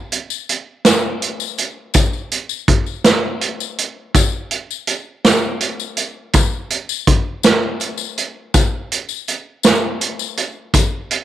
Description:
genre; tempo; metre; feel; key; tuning
rock; 55 BPM (dotted quarters); 6/8; straight; none; none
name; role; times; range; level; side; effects
vintage drum kit; drums; 0.1-11.2 s; hi-hat, kick drum, snare drum; -15 LUFS; right 1 dB; none
tambourine; percussion; 0.3-10.9 s; none; -24 LUFS; left 17 dB; none
room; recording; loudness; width
moderate spring reverb, RT60 2.1 s; 1960s-style stereo; -16 LUFS; side -12 dB against mid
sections
0.0-11.2 A section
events
none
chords
none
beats
0.85 | 1.95 3.05 | 4.15 5.25 | 6.35 7.45 | 8.54 9.64 | 10.74

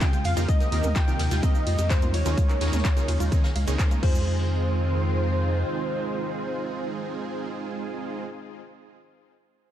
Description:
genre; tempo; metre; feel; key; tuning
progressive house; 127 BPM; 4/4; straight; F minor; A4 = 439 Hz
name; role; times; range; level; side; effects
wide unison lead; melody; 0.0-8.2 s; C5 to G5; -33 LUFS; equal; sidechain pumping, tape echo
soft synth bell; second line; 0.0-8.2 s; C5 to G5; -38 LUFS; left 3 dB; none
lush unison pad; sustained chords; 0.0-8.2 s; C3 to C5; -34 LUFS; equal; chorus, phaser, sidechain pumping
wide unison pluck; arpeggios; 0.0-4.5 s; C4 to F5; -36 LUFS; equal; sidechain pumping, ping-pong delay
supersaw stab; stabs; 0.0-8.2 s; Db3 to Db5; -33 LUFS; right 4 dB; sidechain pumping, ping-pong delay
electronic kick drum; drums; 0.0-4.1 s; none; -22 LUFS; equal; overdrive
house drum kit; drums; 0.0-4.1 s; crash cymbal, handclaps, hi-hat, ride cymbal; -35 LUFS; equal; overdrive
vintage brush drum kit; drums; 0.0-4.0 s; hi-hat, snare drum; -40 LUFS; left 2 dB; none
cabasa; percussion; 0.0-4.2 s; none; -44 LUFS; right 4 dB; none
electronic bongos, congas and toms; percussion; 0.1-4.1 s; none; -36 LUFS; right 4 dB; overdrive, sidechain pumping on perc, sidechain pumping on toms
round analog bass; bass; 0.2-5.6 s; Db2 to F2; -24 LUFS; equal; sidechain pumping
room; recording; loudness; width
little or no reverb; dark, warm production; -22 LUFS; side -11 dB against mid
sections
0.0-4.3 A section; 4.3-8.0 B section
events
drop 0.0-4.3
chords
0.5 Cm7; 2.4 Eb7sus4; 4.0 Fm7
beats
0.01 | 0.49 0.96 1.43 1.90 | 2.38 2.85 3.32 3.79 | 4.26 4.74 5.21 5.68 | 6.16 6.63 7.10 7.57

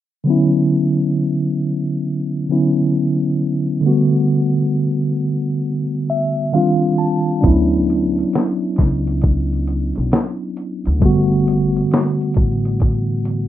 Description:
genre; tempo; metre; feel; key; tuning
lo-fi hip hop; 67 BPM; 4/4; swing 65% on 16ths; D major; A4 = 440 Hz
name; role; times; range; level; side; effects
mellow tine electric piano; accompaniment; 0.2-13.5 s; D3 to A5; -16 LUFS; equal; medium stereo tremolo, low-pass filter
upright bass; bass; 7.4-13.5 s; G1 to D2; -20 LUFS; equal; none
lo-fi sampler-style drum kit; drums; 7.4-13.5 s; hi-hat, kick drum, snare drum; -16 LUFS; equal; none
room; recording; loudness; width
moderate studio reverb, RT60 0.6 s; rough home demo mix, low-pass filter; -15 LUFS; side -12 dB against mid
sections
0.3-13.5 A section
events
filter sweep 0.3-13.5; tine electric piano fill 5.6-7.4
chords
0.3 Dmaj13; 3.9 Gmaj9; 6.5 Ebmaj13; 7.4 Dmaj13; 11.0 Gmaj9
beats
| 0.27 1.17 2.06 2.96 | 3.85 4.75 5.65 6.54 | 7.44 8.33 9.23 10.12 | 11.02 11.91 12.81

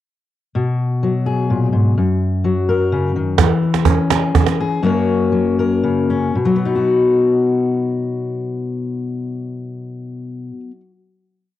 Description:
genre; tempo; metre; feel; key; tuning
acoustic folk duo or small band; 113-127 BPM; 3/4; straight; B major; A4 = 442 Hz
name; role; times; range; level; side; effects
fingerpicked steel-string acoustic guitar; accompaniment; 0.6-10.9 s; F#2 to A#4; -16 LUFS; left 2 dB; none
cajon; percussion; 3.4-4.6 s; none; -15 LUFS; right 5 dB; none
room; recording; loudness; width
light reverb; home recording on cassette; -15 LUFS; side -13 dB against mid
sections
0.6-6.4 interlude; 6.4-9.5 final chord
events
slowing down 3.4-6.4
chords
0.6 B5; 2.0 F#; 3.4 C#m/E; 4.8 F#; 6.4 B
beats
| 0.56 1.03 1.50 | 1.98 2.45 2.92 | 3.40 3.87 4.35 | 4.83 5.33 5.83 | 6.36 6.89 7.42 | 7.95 8.48 9.01

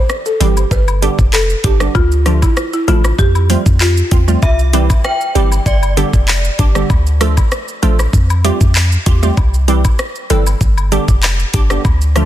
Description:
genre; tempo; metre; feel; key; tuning
dancehall; 97 BPM; 4/4; straight; C major; A4 = 440 Hz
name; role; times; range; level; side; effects
buzzing marimba with medium mallets; melody; 0.0-4.3 s; E4 to B4; -19 LUFS; equal; digital delay
island pop drum kit; drums; 0.1-12.3 s; handclaps, hi-hat, kick drum, rim click, shaker; -14 LUFS; equal; none
glassy wavetable pluck; accompaniment; 0.4-12.3 s; D3 to A4; -18 LUFS; right 3 dB; chorus, sidechain pumping
clean 808-style bass; bass; 0.4-12.3 s; F1 to F2; -14 LUFS; equal; none
cabasa and woodblock; percussion; 0.4-12.3 s; none; -28 LUFS; left 6 dB; none
synth chime; second line; 4.4-6.9 s; D5 to G5; -21 LUFS; left 1 dB; ensemble chorus, digital delay
room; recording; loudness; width
little or no reverb; dense, heavily limited modern master; -11 LUFS; side -12 dB against mid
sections
0.0-12.3 A section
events
none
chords
0.0 C; 0.7 G; 2.0 Dm; 3.2 Fadd9; 4.4 C; 5.7 G; 6.9 Dm; 8.1 Fadd9; 9.4 C; 10.6 G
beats
0.10 0.71 1.33 | 1.95 2.57 3.19 3.81 | 4.43 5.04 5.66 6.28 | 6.90 7.52 8.14 8.76 | 9.37 9.99 10.61 11.23 | 11.85

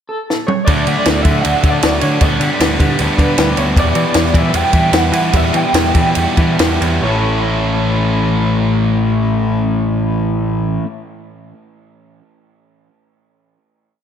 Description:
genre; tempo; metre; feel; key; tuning
indie rock; 133-156 BPM; 4/4; straight; A mixolydian; A4 = 440 Hz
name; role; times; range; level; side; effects
electric guitar through a small old amp; melody; 0.1-10.8 s; A4 to G5; -20 LUFS; equal; tremolo, slapback echo, tape echo
compact cocktail drum kit; drums; 0.3-6.9 s; kick drum, ride cymbal, snare drum, toms; -16 LUFS; equal; none
biting overdriven guitar; riff; 0.7-10.9 s; A2 to A4; -20 LUFS; right 7 dB; wide subtle chorus, tape echo
overdriven electric guitar; riff; 0.7-10.9 s; E2 to G4; -19 LUFS; left 8 dB; spring reverb, slapback echo
growling picked electric bass; bass; 0.7-10.8 s; A1 to E3; -18 LUFS; equal; overdrive
room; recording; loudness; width
light reverb, studio reverb; none; -12 LUFS; side -8 dB against mid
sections
0.0-0.7 pickup bar; 0.7-7.0 pre-chorus; 7.0-10.6 final chord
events
drum fill 0.3-0.7; slowing down 3.8-7.0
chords
0.0 N.C.; 0.7 D; 2.2 G/D; 3.8 Em; 7.0 A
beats
0.30 | 0.68 1.07 1.46 1.84 | 2.23 2.61 3.00 3.38 | 3.77 4.16 4.54 4.94 | 5.34 5.75 6.17 6.60 | 7.04 7.50 7.95 8.40 | 8.85 9.30 9.75 10.20

